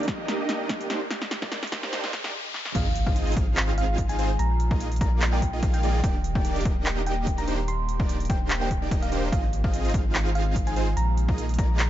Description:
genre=future bass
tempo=146 BPM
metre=4/4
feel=swing 54% on 16ths, half-time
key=Eb major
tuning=A4 = 440 Hz
part: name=airy breathy pad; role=sustained chords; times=0.0-11.9 s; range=Eb3 to G4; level=-38 LUFS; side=right 1 dB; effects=chorus, phaser, sidechain pumping
part: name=supersaw chords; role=riff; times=0.0-11.9 s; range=Bb3 to F5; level=-31 LUFS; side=right 2 dB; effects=sidechain pumping, low-pass filter, tape echo
part: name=saturated sub bass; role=bass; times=0.0-11.9 s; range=Eb1 to Bb1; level=-26 LUFS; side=equal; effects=sidechain pumping, high-pass filter
part: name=big-room dance drum kit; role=drums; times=0.0-11.9 s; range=crash cymbal, handclaps, hi-hat, snare drum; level=-31 LUFS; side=equal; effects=overdrive
part: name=riser, swell and impact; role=sound effects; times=0.0-4.4 s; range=none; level=-35 LUFS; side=left 1 dB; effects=none
part: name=electronic kick drum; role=drums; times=0.1-11.7 s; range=none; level=-26 LUFS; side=equal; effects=overdrive
part: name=thumb-piano-like synth pluck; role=melody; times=2.8-11.8 s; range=F5 to C6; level=-34 LUFS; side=equal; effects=chorus, sidechain pumping, ping-pong delay
room=little or no reverb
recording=dark, warm production, high-pass filter, nothing above 7.7 kHz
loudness=-23 LUFS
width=side -13 dB against mid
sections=0.0-2.8 A section; 2.8-11.9 B section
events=build-up 0.0-2.8; drum fill 0.0-2.3, 2.5; riser 0.0-2.8; filter sweep on supersaw synth 0.0-2.8; filter sweep 0.0-2.8; swell 1.9-2.8; stop 2.3-2.8; drop 2.8-11.9; impact 2.8-4.4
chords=0.0 Ebmaj7; 2.8 Ab6; 4.4 Bb7sus4; 6.0 Ebmaj7; 9.3 Ab6; 11.0 Bb7sus4

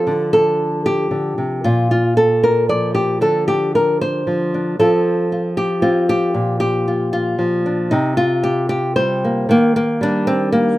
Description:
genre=folk, solo fingerstyle acoustic guitar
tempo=115 BPM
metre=3/4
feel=straight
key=unclear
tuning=A4 = 440 Hz
part: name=nylon-string guitar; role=solo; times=0.0-10.8 s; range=Bb2 to D5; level=-15 LUFS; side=equal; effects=none
room=studio reverb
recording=rough home demo mix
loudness=-15 LUFS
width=side -16 dB against mid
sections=0.0-9.5 A section; 9.5-10.8 B section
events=none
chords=0.1 Dm; 1.6 Bb5; 3.2 Dm; 4.8 F; 6.3 Bb6; 7.9 C5; 9.5 Eb

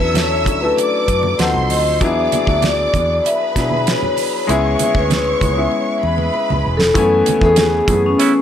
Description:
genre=lush 1970s-style soul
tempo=97 BPM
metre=4/4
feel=straight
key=F# minor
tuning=A4 = 440 Hz
part: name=vibraphone with soft mallets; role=melody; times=0.0-8.4 s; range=C#4 to F#5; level=-17 LUFS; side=left 2 dB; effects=none
part: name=warm studio violin section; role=second line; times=0.0-6.9 s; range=B4 to E6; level=-23 LUFS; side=right 2 dB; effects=none
part: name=clear grand piano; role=accompaniment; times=0.0-8.4 s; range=E3 to G#5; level=-20 LUFS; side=left 3 dB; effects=none
part: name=vintage muted fingered electric bass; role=bass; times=0.0-8.1 s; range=E1 to B2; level=-21 LUFS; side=right 1 dB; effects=none
part: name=congas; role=percussion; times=0.1-8.0 s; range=none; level=-27 LUFS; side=right 7 dB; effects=none
part: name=damped 70s drum kit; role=drums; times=0.2-8.3 s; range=hi-hat, kick drum, snare drum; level=-19 LUFS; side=right 1 dB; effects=none
part: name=mellow horn section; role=stabs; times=8.2-8.3 s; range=B3 to E4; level=-18 LUFS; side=right 8 dB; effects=none
room=small room reverb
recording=none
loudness=-13 LUFS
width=side -9 dB against mid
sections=0.0-7.0 A section; 7.0-8.4 B section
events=drum fill 5.7-7.0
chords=0.0 Dmaj9; 1.4 D#dim7; 2.0 E9; 4.5 C#m7; 7.0 F#m11

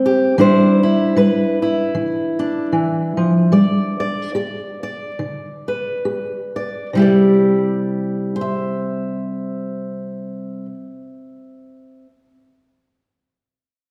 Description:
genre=folk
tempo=66-78 BPM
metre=4/4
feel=swing 57% on 8ths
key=C major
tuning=A4 = 440 Hz
part: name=fingerpicked steel-string acoustic guitar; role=accompaniment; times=0.0-12.1 s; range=C3 to E5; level=-18 LUFS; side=equal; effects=none
room=wet scoring stage reverb, RT60 1.9 s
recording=recorded in a church or concert hall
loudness=-18 LUFS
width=mono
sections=0.0-6.9 A section; 6.9-10.6 B section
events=slowing down 0.4-6.9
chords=0.4 Cadd9/E; 3.5 G; 6.9 Cadd9

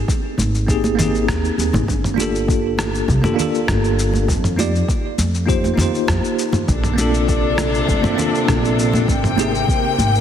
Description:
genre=sunset chillout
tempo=100 BPM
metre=4/4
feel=straight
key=Bb major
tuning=A4 = 442 Hz
part: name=dusty soul sampler-style drum kit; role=drums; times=0.1-10.2 s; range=cabasa, rim click, toms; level=-25 LUFS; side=equal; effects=overdrive, studio reverb
part: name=electronic kick drum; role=drums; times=0.1-9.8 s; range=none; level=-21 LUFS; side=equal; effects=overdrive, studio reverb
part: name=upright bass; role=bass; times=0.4-10.2 s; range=G1 to F2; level=-20 LUFS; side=equal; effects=none
part: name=congas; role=percussion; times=0.4-10.1 s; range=none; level=-27 LUFS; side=right 1 dB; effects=none
part: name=bell-like tine electric piano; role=accompaniment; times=0.7-9.5 s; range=Bb3 to D5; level=-20 LUFS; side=right 1 dB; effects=medium stereo tremolo, auto-pan, low-pass filter, tape echo
part: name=clear symphonic string section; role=sustained chords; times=6.7-10.2 s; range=C3 to G5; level=-20 LUFS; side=left 3 dB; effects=none
room=moderate concert hall reverb, RT60 2.1 s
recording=heavily compressed radio sound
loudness=-15 LUFS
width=side -9 dB against mid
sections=0.0-10.2 A section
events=none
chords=0.0 Abmaj9; 1.9 Gm9; 4.3 F9sus4; 6.7 Bbmaj9; 9.1 Abmaj9

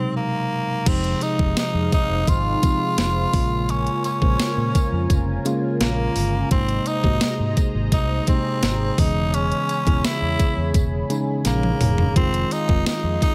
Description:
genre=1980s-style pop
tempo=85 BPM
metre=4/4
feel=straight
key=unclear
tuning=A4 = 440 Hz
part: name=raspy tenor saxophone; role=melody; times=0.0-13.3 s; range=Bb3 to F4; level=-28 LUFS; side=equal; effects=none
part: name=mellow tine electric piano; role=accompaniment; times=0.0-13.3 s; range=Cb3 to C5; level=-27 LUFS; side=equal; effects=none
part: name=phased analog pad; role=sustained chords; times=0.9-13.3 s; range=Db4 to C6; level=-34 LUFS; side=equal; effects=phaser, chorus
part: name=vintage muted fingered electric bass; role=bass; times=0.9-13.2 s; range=E1 to Bb2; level=-27 LUFS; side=equal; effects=none
part: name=clean 12-bit digital drum machine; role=drums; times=0.9-13.3 s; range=crash cymbal, hi-hat, kick drum, snare drum, tambourine, toms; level=-23 LUFS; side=equal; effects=overdrive
part: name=tambourine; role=percussion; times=0.9-13.3 s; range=none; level=-43 LUFS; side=equal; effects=none
room=light reverb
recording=none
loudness=-21 LUFS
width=mono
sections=0.9-13.3 A section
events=break 0.0-0.9; drum fill 11.5-12.2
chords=0.0 Ab7; 0.9 Fm7; 3.3 Bbm7; 6.5 Abadd9; 9.0 E6; 12.2 Fm7

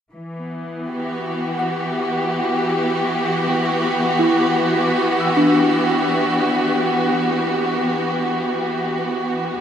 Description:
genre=ambient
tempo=free time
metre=none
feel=none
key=unclear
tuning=A4 = 441 Hz
part: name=rich studio string section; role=sustained chords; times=0.1-9.6 s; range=E3 to G4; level=-18 LUFS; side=equal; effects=shimmer reverb
part: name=soft synth bell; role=arpeggios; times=1.6-9.6 s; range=D4 to E6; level=-23 LUFS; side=equal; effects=chorus, phaser, tape echo, shimmer reverb
room=wet huge ambient reverb, RT60 8.0 s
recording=in a vast, echoing space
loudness=-17 LUFS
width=side -8 dB against mid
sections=0.1-9.6 A section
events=none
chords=0.1 Em7

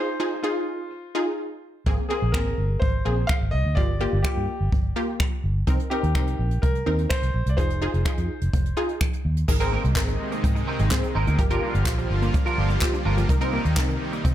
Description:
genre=dance-pop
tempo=126 BPM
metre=4/4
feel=straight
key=unclear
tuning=A4 = 440 Hz
part: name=clear concert grand piano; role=melody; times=0.0-9.0 s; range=F4 to F5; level=-31 LUFS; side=left 1 dB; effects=ping-pong delay
part: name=wide unison pluck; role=accompaniment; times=0.0-14.2 s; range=Bb3 to C5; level=-28 LUFS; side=equal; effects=sidechain pumping
part: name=vintage muted fingered electric bass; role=bass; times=1.9-14.3 s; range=F1 to C3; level=-24 LUFS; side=equal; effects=sidechain pumping
part: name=jazz brush drum kit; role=drums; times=1.9-14.3 s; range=crash cymbal, finger snaps, handclaps, hi-hat, kick drum, snare drum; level=-25 LUFS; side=equal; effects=none
part: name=supersaw pad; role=sustained chords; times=9.5-14.3 s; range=C3 to F4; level=-30 LUFS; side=right 1 dB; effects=sidechain pumping
part: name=wide unison pluck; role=arpeggios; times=9.5-14.3 s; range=Eb3 to F4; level=-34 LUFS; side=left 2 dB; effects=sidechain pumping, ping-pong delay
part: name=twangy electric guitar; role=riff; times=9.5-14.3 s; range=C4 to Bb4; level=-32 LUFS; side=right 5 dB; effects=ensemble chorus
room=light reverb, small room ambience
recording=none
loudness=-21 LUFS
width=side -12 dB against mid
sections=0.0-9.5 A section; 9.5-14.3 B section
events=none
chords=0.0 Fm7; 1.9 Abadd9; 3.8 Gm7; 5.7 Cm7; 7.6 Fm7; 9.5 Abadd9; 11.4 Gm7; 13.3 Cm7

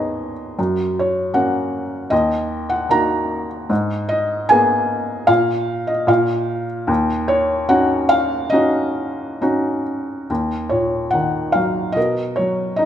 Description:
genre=classical, lyrical solo piano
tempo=66-80 BPM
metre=4/4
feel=rubato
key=Eb minor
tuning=A4 = 441 Hz
part: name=felt-muted upright piano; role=solo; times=0.0-12.9 s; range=D#2 to Bb5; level=-17 LUFS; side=equal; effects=none
room=moderate scoring stage reverb, RT60 1.8 s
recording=minimal, uncompressed stereo recording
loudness=-17 LUFS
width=side -10 dB against mid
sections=0.0-10.3 A section; 10.3-12.9 B section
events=none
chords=0.0 B6/D#; 0.6 Gb; 2.1 Ebm; 3.7 Abmadd9; 5.3 N.C.; 6.9 Ebm7; 10.3 Ebm; 12.0 Bmaj7

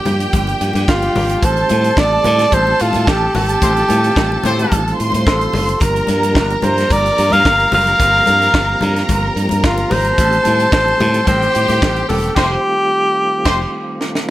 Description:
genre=disco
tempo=110 BPM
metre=4/4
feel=straight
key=G minor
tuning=A4 = 440 Hz
part: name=warm alto saxophone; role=melody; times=0.0-14.3 s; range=F4 to F5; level=-16 LUFS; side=equal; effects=none
part: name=warm studio violin section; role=second line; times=0.0-13.6 s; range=G4 to C6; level=-20 LUFS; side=right 1 dB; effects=none
part: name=mellow tonewheel organ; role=sustained chords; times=0.0-14.3 s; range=Eb3 to G4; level=-25 LUFS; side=right 2 dB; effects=chorus vibrato, fast rotary speaker
part: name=modern bright fingered electric bass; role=bass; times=0.1-13.6 s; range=E1 to A2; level=-19 LUFS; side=equal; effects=none
part: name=tight funk drum kit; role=drums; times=0.1-14.3 s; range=crash cymbal, hi-hat, kick drum, snare drum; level=-19 LUFS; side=equal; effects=none
part: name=congas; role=percussion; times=0.1-12.2 s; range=none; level=-24 LUFS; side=left 3 dB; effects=none
part: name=warm horn section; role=stabs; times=3.6-4.8, 12.4-13.6 s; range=A3 to C5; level=-21 LUFS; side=left 3 dB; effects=none
room=studio reverb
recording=none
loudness=-12 LUFS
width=side -15 dB against mid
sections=0.0-14.3 A section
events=band accent 3.6-5.8, 12.4-14.3; drum fill 14.0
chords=0.0 Gm7; 1.4 Am7b5; 5.8 Gm7; 10.2 Am7b5; 12.4 F9

